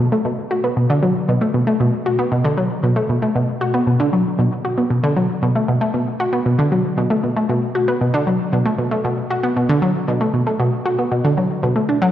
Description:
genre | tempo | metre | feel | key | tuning
ambient | 116 BPM | 4/4 | straight | B minor | A4 = 440 Hz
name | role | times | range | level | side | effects
analog pluck | solo | 0.0-12.1 s | B2 to F#4 | -16 LUFS | equal | chorus, ping-pong delay
room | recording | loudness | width
wet concert hall reverb, RT60 2.2 s | worn, warbling old tape, cassette tape, warbly pitch drift | -16 LUFS | side -11 dB against mid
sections
0.0-12.1 A section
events
none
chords
none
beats
| 0.25 0.77 1.28 1.80 | 2.32 2.83 3.35 3.87 | 4.39 4.90 5.42 5.94 | 6.46 6.97 7.49 8.01 | 8.53 9.04 9.56 10.08 | 10.59 11.11 11.63

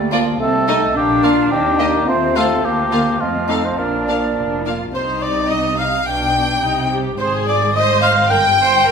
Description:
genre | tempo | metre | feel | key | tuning
quick classical-period movement for symphony orchestra | 107 BPM | 2/4 | straight | Bb major, C minor from 4.9 s | A4 = 441 Hz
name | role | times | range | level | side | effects
dark clarinet | second line | 0.0-4.7 s | A3 to F4 | -24 LUFS | left 3 dB | none
small flute group | second line | 0.0-4.7 s | C5 to F5 | -25 LUFS | right 1 dB | none
warm bassoon | accompaniment | 0.0-4.6 s | F3 to C4 | -24 LUFS | right 2 dB | none
warm chamber cello section | bass | 0.0-8.9 s | G2 to F4 | -24 LUFS | equal | none
warm chamber double bass section | bass | 0.0-8.9 s | F1 to F2 | -25 LUFS | right 4 dB | none
rich chamber violin section | melody | 0.1-8.9 s | C5 to G5 | -25 LUFS | left 4 dB | none
rich chamber violin section | second line | 0.1-8.9 s | D4 to G5 | -23 LUFS | left 2 dB | none
rich chamber viola section | accompaniment | 0.1-8.9 s | A3 to C5 | -23 LUFS | right 2 dB | none
warm oboe | second line | 0.4-8.9 s | F4 to G5 | -19 LUFS | left 1 dB | none
room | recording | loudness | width
wet concert hall reverb, RT60 1.7 s | minimal, uncompressed stereo recording | -14 LUFS | side -6 dB against mid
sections
0.0-4.9 A section; 4.9-8.9 B section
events
none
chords
0.4 Adim/C; 1.0 Bb; 1.5 Eb; 2.1 F7/Eb; 2.6 Bb/D; 3.2 F7; 3.8 Bb; 4.9 Cm; 6.1 G/B; 6.6 Cm; 7.2 Ab; 8.3 Gsus4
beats
| 0.40 0.96 | 1.51 2.08 | 2.64 3.21 | 3.79 4.37 | 4.95 5.51 | 6.08 6.64 | 7.20 7.75 | 8.31 8.86

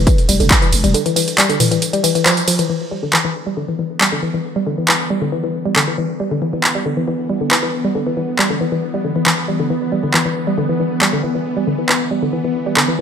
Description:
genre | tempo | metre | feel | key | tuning
driving peak-time techno | 137 BPM | 4/4 | straight | E minor | A4 = 442 Hz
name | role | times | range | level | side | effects
woody wave-folded pluck | riff | 0.0-13.0 s | D3 to G3 | -18 LUFS | left 2 dB | chorus, tube saturation, sidechain pumping, ping-pong delay
growling 808-style bass | bass | 0.0-0.9 s | E1 | -18 LUFS | equal | sidechain pumping, low-pass filter
electronic kick drum | drums | 0.1-0.6 s | none | -14 LUFS | equal | overdrive
techno drum kit | drums | 0.1-12.9 s | handclaps, hi-hat, ride cymbal, tambourine, toms | -16 LUFS | right 1 dB | overdrive, gated reverb
swarming drone | drone | 3.5-13.0 s | E3 to B3 | -22 LUFS | right 1 dB | built-in reverb, sidechain pumping
room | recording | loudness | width
moderate plate reverb, RT60 1.7 s | bright 1980s-style digital production | -14 LUFS | side -8 dB against mid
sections
0.0-2.7 A section; 2.7-13.0 B section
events
drop 0.0-2.7; band accent 2.3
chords
0.0 N.C.; 2.7 E5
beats
0.07 0.51 | 0.94 1.38 1.82 2.26 | 2.69 3.13 3.57 4.01 | 4.45 4.88 5.32 5.76 | 6.20 6.64 7.08 7.51 | 7.95 8.39 8.83 9.26 | 9.70 10.14 10.58 11.02 | 11.45 11.89 12.33 12.77

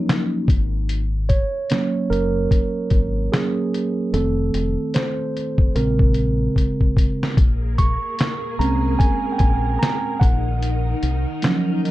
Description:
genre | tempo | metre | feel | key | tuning
lo-fi hip hop | 74 BPM | 4/4 | swing 61% on 16ths | Bb minor | A4 = 439 Hz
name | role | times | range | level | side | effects
vibraphone with soft mallets | second line | 0.0-0.5, 11.8-11.9 s | Bb3 to Eb5 | -28 LUFS | left 6 dB | low-pass filter, analog delay
mellow tine electric piano | accompaniment | 0.0-11.9 s | Db3 to Db6 | -22 LUFS | right 2 dB | low-pass filter, plate reverb
lo-fi sampler-style drum kit | drums | 0.1-11.9 s | hi-hat, kick drum, snare drum | -19 LUFS | left 1 dB | none
deep dub fingered electric bass | bass | 0.5-11.2 s | F1 to C2 | -22 LUFS | left 1 dB | none
string machine, full ensemble | sustained chords | 7.4-11.9 s | Eb3 to Bb4 | -29 LUFS | left 1 dB | ensemble chorus, low-pass filter
room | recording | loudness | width
light reverb | dark, warm production | -18 LUFS | side -16 dB against mid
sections
0.0-7.4 A section; 7.4-11.9 A section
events
tine electric piano solo 0.0-7.4, 7.4-11.9; drum fill 6.6-7.4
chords
0.5 Ab7sus4; 4.1 F7; 5.8 Bbm7; 10.2 Ebm7/Bb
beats
0.08 | 0.89 1.70 2.51 3.32 | 4.13 4.94 5.75 6.56 | 7.37 8.18 8.99 9.81 | 10.62 11.43

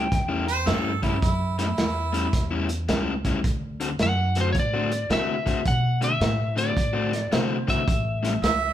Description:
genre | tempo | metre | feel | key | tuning
electric blues shuffle | 108 BPM | 4/4 | swing 65% on 8ths | unclear | A4 = 439 Hz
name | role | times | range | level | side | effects
lightly driven lead guitar | melody | 0.0-0.7, 4.0-8.7 s | C5 to G5 | -27 LUFS | left 2 dB | none
crunchy overdriven guitar | riff | 0.0-8.4 s | A2 to F#4 | -28 LUFS | left 3 dB | none
upright bass | bass | 0.0-8.7 s | A1 to C3 | -27 LUFS | right 1 dB | none
vintage drum kit | drums | 0.1-8.6 s | hi-hat, kick drum, snare drum | -26 LUFS | equal | none
warm harmonica | second line | 0.5-2.7, 8.4-8.7 s | E4 to E5 | -27 LUFS | right 5 dB | none
room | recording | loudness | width
moderate large studio reverb, RT60 1.0 s | band playing live in one room | -22 LUFS | side -11 dB against mid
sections
0.0-8.7 A section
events
none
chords
0.0 A7; 3.4 D7; 7.9 A7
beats
0.12 0.67 | 1.23 1.78 2.33 2.89 | 3.44 4.00 4.55 5.11 | 5.66 6.21 6.77 7.32 | 7.88 8.43

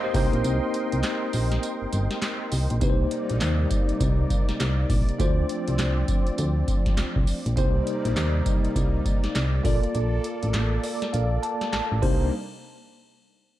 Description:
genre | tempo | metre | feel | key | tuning
R&B, new jack swing | 101 BPM | 4/4 | swing 62% on 16ths | C dorian | A4 = 440 Hz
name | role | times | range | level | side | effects
bell-like tine electric piano | accompaniment | 0.0-12.3 s | A3 to A5 | -29 LUFS | equal | fast stereo tremolo
brassy analog pad | sustained chords | 0.0-12.3 s | C3 to C6 | -31 LUFS | equal | chorus
solid FM bass | bass | 0.1-12.3 s | G1 to Eb2 | -24 LUFS | equal | none
booming analog drum machine | drums | 0.1-12.2 s | crash cymbal, handclaps, hi-hat, kick drum, snare drum, tambourine | -26 LUFS | equal | none
room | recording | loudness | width
little or no reverb | dark, warm production | -22 LUFS | side -14 dB against mid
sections
0.0-2.8 A section; 2.8-12.3 B section; 12.3-13.6 C section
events
break 0.4-2.8; kick muted 9.9-12.3; tine electric piano fill 10.5-12.3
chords
0.0 Cm7; 5.2 Dm7; 7.6 Cm7; 9.6 Bbmaj7; 12.0 Cm7; 12.3 N.C.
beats
| 0.44 1.04 1.63 2.22 | 2.82 3.41 4.01 4.60 | 5.19 5.79 6.38 6.98 | 7.57 8.16 8.76 9.35 | 9.95 10.54 11.13 11.73 | 12.32

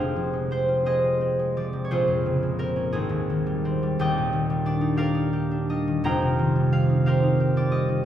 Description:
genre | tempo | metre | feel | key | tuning
classical, solo harp piece | 54-62 BPM (dotted quarters) | 6/8 | rubato | unclear | A4 = 438 Hz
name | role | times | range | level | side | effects
concert harp | solo | 0.0-8.1 s | Eb1 to Bb5 | -21 LUFS | equal | none
room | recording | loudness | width
moderate recital hall reverb, RT60 1.5 s | heard from further back in the room | -21 LUFS | side -10 dB against mid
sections
0.0-8.1 A section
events
none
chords
0.0 Fm; 1.9 Bbm9; 2.9 Abmaj7; 4.0 Ebmaj7; 6.0 F9sus4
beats
0.88 | 1.91 2.92 | 3.99 4.98 | 6.05 7.06

